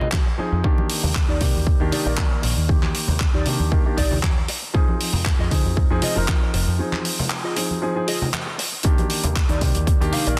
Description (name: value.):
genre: nu-disco, nu disco.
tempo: 117 BPM.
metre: 4/4.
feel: swing 54% on 16ths.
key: Eb major.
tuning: A4 = 440 Hz.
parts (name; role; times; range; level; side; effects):
mellow electric guitar; riff; 0.0-10.3 s; Eb4 to F5; -31 LUFS; equal; analog chorus.
congas; percussion; 0.0-10.2 s; none; -33 LUFS; equal; none.
damped 70s drum kit; drums; 0.1-10.4 s; handclaps, hi-hat; -29 LUFS; equal; none.
electronic kick drum; drums; 0.1-10.0 s; none; -22 LUFS; equal; none.
warm concert grand piano; accompaniment; 0.4-10.4 s; Eb3 to D5; -29 LUFS; equal; none.
overdriven picked electric bass; bass; 0.4-10.4 s; F1 to D3; -25 LUFS; equal; tube saturation.
room: little or no reverb.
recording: dense, heavily limited modern master.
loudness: -21 LUFS.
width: mono.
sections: 0.0-10.4 A section.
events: break 6.8-8.8.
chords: 0.0 Fm7; 0.6 Ebmaj7; 4.7 Fm7; 8.8 Ebmaj7.